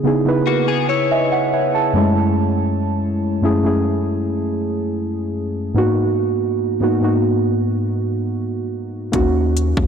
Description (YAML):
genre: contemporary R&B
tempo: 71 BPM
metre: 4/4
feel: straight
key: unclear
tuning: A4 = 438 Hz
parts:
  - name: muted felt-like synth keys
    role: accompaniment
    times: 0.0-9.9 s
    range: Gb2 to A5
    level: -17 LUFS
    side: right 1 dB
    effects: chorus
  - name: direct-recorded clean electric guitar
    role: arpeggios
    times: 0.5-1.9 s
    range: Bb3 to Db5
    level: -21 LUFS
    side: left 9 dB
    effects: analog chorus, ping-pong delay
  - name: long sustained 808-style bass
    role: bass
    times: 9.1-9.9 s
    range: Eb2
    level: -18 LUFS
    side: left 1 dB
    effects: none
  - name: trap drum kit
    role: drums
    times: 9.1-9.9 s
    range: hi-hat, kick drum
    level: -19 LUFS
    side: left 1 dB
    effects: none
room: moderate lush hall reverb, RT60 2.6 s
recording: blown-out, overdriven recording, overdrive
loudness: -16 LUFS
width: side -7 dB against mid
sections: 0.0-9.9 A section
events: synth keys fill 0.7-2.4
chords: 0.0 Dbm7; 1.9 Gbm7; 5.8 Abm7; 9.1 Ebm7